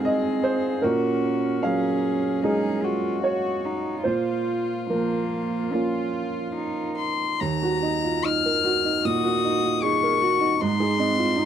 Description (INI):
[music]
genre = neoclassical piano and strings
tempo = 74 BPM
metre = 4/4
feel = uneven beats, rubato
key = unclear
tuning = A4 = 440 Hz
[part]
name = rich violin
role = melody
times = 0.0-11.5 s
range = F4 to F6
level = -26 LUFS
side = left 8 dB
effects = none
[part]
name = rich cello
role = second line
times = 0.0-11.5 s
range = Bb3 to Ab4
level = -28 LUFS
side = right 4 dB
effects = none
[part]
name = bright upright piano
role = accompaniment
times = 0.0-11.5 s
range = Eb2 to Gb5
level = -24 LUFS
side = right 3 dB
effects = none
[sound]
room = little or no reverb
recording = dry, close 1970s-style studio recording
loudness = -21 LUFS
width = side -9 dB against mid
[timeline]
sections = 0.0-7.4 A section; 7.4-11.5 A section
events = none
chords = 0.0 Ab; 0.8 Gbadd9/Bb; 4.1 Bbm; 7.4 Ebm; 10.6 Ab